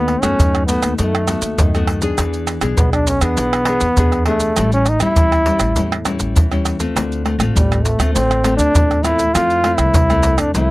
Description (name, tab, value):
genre	samba and choro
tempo	100 BPM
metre	4/4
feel	straight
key	unclear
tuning	A4 = 440 Hz
part	clear trombone	melody	0.0-10.7 s	G3 to F4	-17 LUFS	equal	none
part	nylon-string guitar	accompaniment	0.0-10.7 s	A2 to G#4	-22 LUFS	left 3 dB	none
part	upright bass	bass	0.0-10.7 s	A1 to F#2	-20 LUFS	equal	none
part	pandeiro, tamborim, maracas and surdo	percussion	0.1-10.7 s	none	-18 LUFS	right 1 dB	none
room	light reverb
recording	none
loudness	-13 LUFS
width	side -19 dB against mid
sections	0.0-10.7 A section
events	none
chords	0.0 B7/D#; 2.2 E7; 4.6 A7; 7.0 Dm7; 9.4 Fmaj7